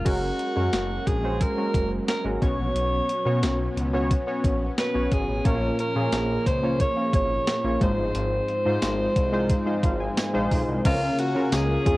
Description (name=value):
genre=1980s-style pop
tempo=89 BPM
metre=4/4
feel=straight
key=unclear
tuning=A4 = 436 Hz
part: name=bright alto saxophone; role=melody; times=0.0-12.0 s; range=F4 to Db5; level=-27 LUFS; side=equal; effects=cassette tape
part: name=warm analog keys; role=accompaniment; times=0.0-12.0 s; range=Ab2 to C6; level=-26 LUFS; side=equal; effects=chorus, cassette tape
part: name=smooth synth bass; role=bass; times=0.0-12.0 s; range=Gb1 to Db3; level=-28 LUFS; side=equal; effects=none
part: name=string machine, violas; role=sustained chords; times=0.1-12.0 s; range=Db3 to Db4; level=-35 LUFS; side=equal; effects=none
part: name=clean 12-bit digital drum machine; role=drums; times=0.1-12.0 s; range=crash cymbal, hi-hat, kick drum, snare drum, tambourine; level=-25 LUFS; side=equal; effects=overdrive, cassette tape
part: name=shimmering bell with halo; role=second line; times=10.9-12.0 s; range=F5 to Ab5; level=-39 LUFS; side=left 4 dB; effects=none
room=moderate small room reverb, RT60 0.6 s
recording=home recording on cassette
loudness=-22 LUFS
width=side -19 dB against mid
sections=0.1-10.8 A section; 10.8-12.0 B section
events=synth keys fill 9.5-10.8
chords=0.1 Gbadd9; 2.4 Cbsus2; 5.5 Bbm; 7.8 Ab6; 10.8 Bbm/Db